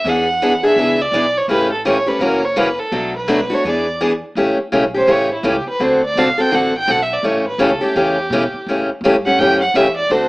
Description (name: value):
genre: acoustic string swing (jazz manouche)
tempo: 167 BPM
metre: 4/4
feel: swing 61% on 8ths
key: A mixolydian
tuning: A4 = 440 Hz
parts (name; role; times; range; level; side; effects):
- rich violin; melody; 0.0-10.3 s; E4 to G5; -18 LUFS; right 1 dB; none
- upright bass; bass; 0.0-10.3 s; F#1 to B2; -30 LUFS; equal; none
- picked steel-string acoustic guitar; accompaniment; 0.1-10.3 s; B2 to A4; -16 LUFS; left 1 dB; none
room: wet studio reverb, RT60 0.5 s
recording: rough home demo mix, AM radio sound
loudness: -14 LUFS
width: side -22 dB against mid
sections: 0.0-4.4 A section; 4.4-10.3 B section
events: violin solo 4.4-10.3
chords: 0.1 E7; 1.5 A7; 2.2 F#7; 2.9 Bm7; 3.6 E7; 4.4 A7; 5.8 D7; 7.2 A7